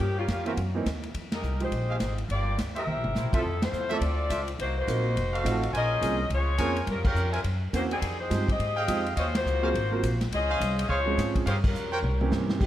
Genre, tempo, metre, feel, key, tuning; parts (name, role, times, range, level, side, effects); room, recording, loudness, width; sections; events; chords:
jazz, big band swing; 210 BPM; 4/4; swing 61% on 8ths; F minor; A4 = 440 Hz
clear saxophone section; melody; 0.0-12.5 s; Eb3 to E5; -30 LUFS; left 2 dB
upright bass; bass; 0.0-12.7 s; F1 to Ab2; -29 LUFS; equal
swinging big-band drum kit; drums; 0.0-12.7 s; crash cymbal, hi-hat, kick drum, ride cymbal, snare drum, toms; -32 LUFS; equal
warm trumpet section; stabs; 0.2-12.0 s; Db4 to Ab5; -33 LUFS; right 1 dB
clear baby grand piano; accompaniment; 0.5-12.6 s; E3 to Bb4; -33 LUFS; right 4 dB
bright trombone section; sustained chords; 12.6-12.7 s; F3 to G4; -32 LUFS; left 1 dB
light reverb; -25 LUFS; side -12 dB against mid
0.0-3.4 A section; 3.4-12.6 B section
band accent 1.3, 3.3, 3.6, 7.0, 9.3, 11.6; drum fill 2.9, 12.0-12.6
0.0 Gm7b5; 0.6 Gb7#11; 1.1 Fm9; 2.3 Gm7; 2.9 C7; 3.4 Fmaj7; 4.6 Cm7b5; 5.2 F7b9; 5.7 Bbm9; 6.9 Gm7b5; 7.5 Gb7#11; 8.0 Fm9; 9.2 Ebm9; 9.7 Ab13; 10.3 Dbmaj7; 11.5 Gm7b5; 12.0 C7b9